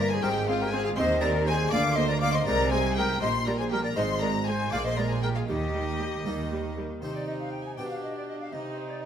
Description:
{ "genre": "classical, baroque-style concerto movement with solo episodes", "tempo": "80 BPM (dotted quarters)", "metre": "6/8", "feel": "straight", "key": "Eb major", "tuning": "A4 = 441 Hz", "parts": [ { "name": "concert flute", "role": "melody", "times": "0.0-9.1 s", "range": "G4 to Ab5", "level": "-31 LUFS", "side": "left 1 dB", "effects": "none" }, { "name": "rich chamber violin section", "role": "melody", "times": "0.0-9.1 s", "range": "G4 to D6", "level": "-33 LUFS", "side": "left 5 dB", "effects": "none" }, { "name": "rich chamber violin section", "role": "second line", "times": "0.0-9.1 s", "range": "Eb4 to Ab5", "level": "-33 LUFS", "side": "left 2 dB", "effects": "none" }, { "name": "harpsichord", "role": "accompaniment", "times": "0.0-9.1 s", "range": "G2 to Bb4", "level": "-35 LUFS", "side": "left 1 dB", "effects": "none" }, { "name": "rich chamber viola section", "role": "accompaniment", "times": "0.0-9.1 s", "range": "G3 to Eb4", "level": "-35 LUFS", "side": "right 2 dB", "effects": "none" }, { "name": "rich studio cello section", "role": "bass", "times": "0.0-9.1 s", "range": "G2 to Eb3", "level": "-34 LUFS", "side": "right 3 dB", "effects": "none" }, { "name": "rich symphonic double bass section", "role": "bass", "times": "0.0-6.9 s", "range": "G1 to Eb2", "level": "-31 LUFS", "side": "right 3 dB", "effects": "none" } ], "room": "wet recital hall reverb, RT60 1.5 s", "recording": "none", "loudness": "-25 LUFS", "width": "side -8 dB against mid", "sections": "0.0-7.0 A section; 7.0-9.1 B section", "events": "none", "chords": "0.2 Fm/Ab; 1.0 Cm/Eb; 1.7 Bb/D; 2.5 Ab/C; 3.2 Gm/Bb; 4.0 Ab; 4.7 Bb5; 5.5 Eb; 7.0 Cm; 7.8 G/B; 8.5 Cm" }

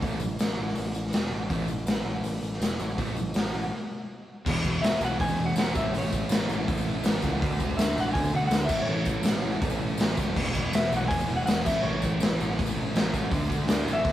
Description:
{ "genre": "garage rock duo or trio", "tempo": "162 BPM", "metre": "4/4", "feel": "straight", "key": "unclear", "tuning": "A4 = 440 Hz", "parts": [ { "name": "thick fuzz guitar", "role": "riff", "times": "0.0-14.1 s", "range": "E2 to D4", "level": "-31 LUFS", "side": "equal", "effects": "distortion" }, { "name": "growling picked electric bass", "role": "bass", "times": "0.0-14.1 s", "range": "E1 to D2", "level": "-32 LUFS", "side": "equal", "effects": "overdrive" }, { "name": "raw garage drum kit", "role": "drums", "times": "0.0-14.1 s", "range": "crash cymbal, hi-hat, kick drum, snare drum", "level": "-27 LUFS", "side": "equal", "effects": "none" }, { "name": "tambourine", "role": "percussion", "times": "0.0-14.1 s", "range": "none", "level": "-45 LUFS", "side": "left 2 dB", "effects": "none" }, { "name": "clean lap steel guitar", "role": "melody", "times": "4.8-14.1 s", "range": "C#5 to G#5", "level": "-30 LUFS", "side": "left 1 dB", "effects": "none" } ], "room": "light reverb", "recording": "rough rehearsal-room recording", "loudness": "-24 LUFS", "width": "side -13 dB against mid", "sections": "0.0-4.5 A section; 4.5-14.1 B section", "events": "break 3.7-4.5", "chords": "0.0 A5; 4.5 E5; 5.7 A; 7.4 D5; 8.7 A; 10.4 E5; 11.7 A; 13.3 D5" }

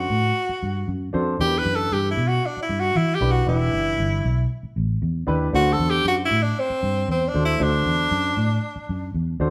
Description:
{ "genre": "uptempo 1960s-style soul", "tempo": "116 BPM", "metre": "4/4", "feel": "straight", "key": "unclear", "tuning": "A4 = 440 Hz", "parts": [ { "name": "breathy tenor saxophone", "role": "melody", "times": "0.0-9.2 s", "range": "C4 to B4", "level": "-25 LUFS", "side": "equal", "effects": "none" }, { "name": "warm grand piano", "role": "accompaniment", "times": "0.0-9.5 s", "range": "D3 to C5", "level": "-29 LUFS", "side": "equal", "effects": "none" }, { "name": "vintage muted fingered electric bass", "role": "bass", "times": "0.0-9.5 s", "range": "E1 to E3", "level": "-26 LUFS", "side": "equal", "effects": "none" } ], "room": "wet stone room reverb, RT60 1.1 s", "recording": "band playing live in one room", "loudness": "-22 LUFS", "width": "mono", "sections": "0.0-9.5 A section", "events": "none", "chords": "0.0 D7; 1.4 Em7; 5.5 D7" }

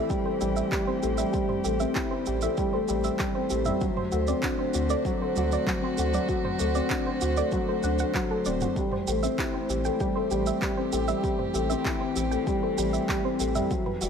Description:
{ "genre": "piano and strings electronica", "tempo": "97 BPM", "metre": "4/4", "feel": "straight", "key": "A dorian", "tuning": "A4 = 439 Hz", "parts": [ { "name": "dark string quartet", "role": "sustained chords", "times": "0.0-14.1 s", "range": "D3 to D5", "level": "-33 LUFS", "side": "right 2 dB", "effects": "sidechain pumping" }, { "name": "soft round pluck", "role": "arpeggios", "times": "0.0-14.1 s", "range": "F#4 to G5", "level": "-32 LUFS", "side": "right 4 dB", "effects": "chorus, sidechain pumping, ping-pong delay" }, { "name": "felt-muted upright piano", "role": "riff", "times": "0.0-14.1 s", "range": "F#3 to F#4", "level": "-28 LUFS", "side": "left 3 dB", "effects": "ping-pong delay" }, { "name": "deep house drum kit", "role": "drums", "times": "0.1-14.1 s", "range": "handclaps, shaker, toms", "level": "-35 LUFS", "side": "right 2 dB", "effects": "none" }, { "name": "electronic kick drum", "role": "drums", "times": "0.1-13.8 s", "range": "none", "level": "-32 LUFS", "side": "right 1 dB", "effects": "none" }, { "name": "warm sub bass", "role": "bass", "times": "0.4-14.1 s", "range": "D1 to D2", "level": "-30 LUFS", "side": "right 1 dB", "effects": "sidechain pumping" } ], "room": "light reverb, digital ambience", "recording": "none", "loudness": "-24 LUFS", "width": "side -6 dB against mid", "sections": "0.0-14.1 A section", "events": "none", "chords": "0.0 Am7; 3.8 D7; 8.8 Am7" }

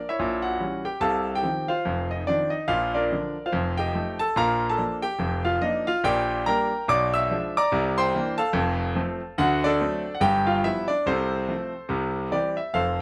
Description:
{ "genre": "jazz, stride piano", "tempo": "143 BPM", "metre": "4/4", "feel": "swing 59% on 8ths", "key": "Bb major, F major from 6.0 s", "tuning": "A4 = 440 Hz", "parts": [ { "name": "clear concert grand piano", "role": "solo", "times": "0.0-13.0 s", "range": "F1 to E6", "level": "-25 LUFS", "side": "equal", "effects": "none" } ], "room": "moderate club reverb, RT60 0.5 s", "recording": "none", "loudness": "-25 LUFS", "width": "mono", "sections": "0.0-12.7 A section", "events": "none", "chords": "0.2 Bbdim7; 1.0 F7/C; 2.7 Bb; 3.5 F9; 4.4 Bb; 6.0 Gm/Bb; 6.9 Bdim7; 7.7 C9; 8.6 F; 9.4 D7; 10.2 G7; 11.1 F/C; 11.9 C" }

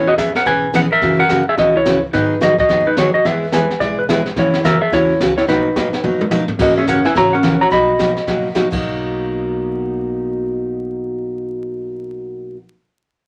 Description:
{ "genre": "country, western swing", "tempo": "215 BPM", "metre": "4/4", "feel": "swing 62% on 8ths", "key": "B major", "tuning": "A4 = 440 Hz", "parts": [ { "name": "clean lap steel guitar", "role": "melody", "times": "0.0-8.6 s", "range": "D#4 to B5", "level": "-17 LUFS", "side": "equal", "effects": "none" }, { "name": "picked steel-string acoustic guitar", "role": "accompaniment", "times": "0.0-12.6 s", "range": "B2 to G#4", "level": "-21 LUFS", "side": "equal", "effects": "none" }, { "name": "upright bass", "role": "bass", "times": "0.0-12.5 s", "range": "F#1 to G#2", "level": "-34 LUFS", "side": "equal", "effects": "none" }, { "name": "jazz brush drum kit", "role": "drums", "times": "0.2-8.8 s", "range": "brushed snare drum, crash cymbal, hi-hat, kick drum, snare drum, toms", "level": "-26 LUFS", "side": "equal", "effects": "none" }, { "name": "pedal steel guitar", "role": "second line", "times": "3.8-4.3 s", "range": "B4 to D5", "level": "-23 LUFS", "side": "equal", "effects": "none" }, { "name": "archtop guitar, miked and amplified", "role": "second line", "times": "6.6-8.6 s", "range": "A#3 to F#4", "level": "-20 LUFS", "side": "equal", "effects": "none" } ], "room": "wet small room ambience, RT60 0.5 s", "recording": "vinyl crackle", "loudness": "-16 LUFS", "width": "mono", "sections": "0.0-6.6 A section; 6.6-8.8 B section; 8.8-11.1 C section", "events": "drum fill 6.0-6.6", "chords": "0.0 E6; 1.0 F#7; 2.1 G#m7; 3.2 E; 4.4 F#7; 5.5 Bmaj7; 6.6 F#7; 7.7 Bmaj7" }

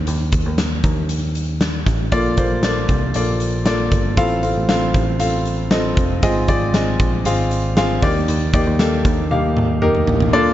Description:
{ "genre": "piano-driven pop", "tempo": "117 BPM", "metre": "4/4", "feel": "straight", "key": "unclear", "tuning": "A4 = 439 Hz", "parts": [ { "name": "picked electric bass", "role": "bass", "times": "0.0-10.3 s", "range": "F1 to Eb2", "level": "-21 LUFS", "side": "equal", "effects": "none" }, { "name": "huge arena drum kit", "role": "drums", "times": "0.1-10.3 s", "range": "hi-hat, kick drum, snare drum, toms", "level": "-20 LUFS", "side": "equal", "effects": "none" }, { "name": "clear grand piano", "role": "accompaniment", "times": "2.1-10.5 s", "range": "Ab2 to F5", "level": "-18 LUFS", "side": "left 1 dB", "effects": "plate reverb" } ], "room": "light reverb", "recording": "dark, warm production, nothing above 7.7 kHz", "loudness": "-15 LUFS", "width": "side -13 dB against mid", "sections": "0.0-10.3 A section", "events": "drum fill 9.3-10.3", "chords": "0.0 N.C.; 2.1 Bbmaj7; 4.2 F/A; 6.2 Ab6; 8.0 Ebmaj7" }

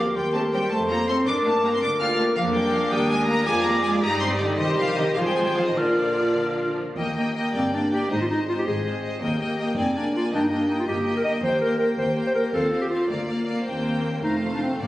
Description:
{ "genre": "quick classical-period movement for symphony orchestra", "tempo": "108 BPM (dotted quarters)", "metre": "6/8", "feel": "rubato", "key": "Eb major", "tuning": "A4 = 441 Hz", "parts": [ { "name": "rich studio violin section", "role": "melody", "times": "0.0-14.9 s", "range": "D5 to F6", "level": "-30 LUFS", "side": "left 1 dB", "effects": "none" }, { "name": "rich studio violin section", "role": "second line", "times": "0.0-14.9 s", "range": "D4 to Eb5", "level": "-32 LUFS", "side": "left 1 dB", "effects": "none" }, { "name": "silver concert flute", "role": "second line", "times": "0.0-6.8 s", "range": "C6 to F6", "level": "-29 LUFS", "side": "equal", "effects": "none" }, { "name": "warm clarinet", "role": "second line", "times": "0.0-14.9 s", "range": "Bb3 to Eb5", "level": "-26 LUFS", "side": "equal", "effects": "none" }, { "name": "warm studio viola section", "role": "accompaniment", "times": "0.0-14.9 s", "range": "F3 to Ab4", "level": "-28 LUFS", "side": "equal", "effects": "none" }, { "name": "dark French horn section", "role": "sustained chords", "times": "0.0-14.9 s", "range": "A3 to C5", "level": "-29 LUFS", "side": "left 1 dB", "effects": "none" }, { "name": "rich studio double bass section", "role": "bass", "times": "0.0-14.9 s", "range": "F1 to G2", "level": "-34 LUFS", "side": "right 1 dB", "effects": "none" }, { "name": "warm studio cello section", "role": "bass", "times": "0.0-14.9 s", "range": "D2 to F4", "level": "-30 LUFS", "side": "right 1 dB", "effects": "none" }, { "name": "timpani", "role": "percussion", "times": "14.8-14.9 s", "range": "Bb2", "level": "-30 LUFS", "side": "equal", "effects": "none" } ], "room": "wet scoring stage reverb, RT60 2.0 s", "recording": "recorded on a phone in the room, studio reverb, nothing above 10.8 kHz", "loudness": "-21 LUFS", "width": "side -15 dB against mid", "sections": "0.0-7.0 A section; 7.0-14.9 B section", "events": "none", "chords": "0.2 Cm7/Eb; 0.7 F; 1.3 Gm; 2.4 Bb7/F; 2.9 Eb; 3.5 Ddim/F; 4.0 Eb/G; 4.6 Cm; 5.2 Fm/Ab; 5.8 Bb; 7.0 Eb; 7.5 Gm; 8.1 Ab; 9.2 Eb; 9.8 Bb7/F; 10.3 Eb/G; 11.4 Cm7/Eb; 12.5 F7/Eb; 13.1 Bb/D; 13.7 Cm7/Eb; 14.2 F7" }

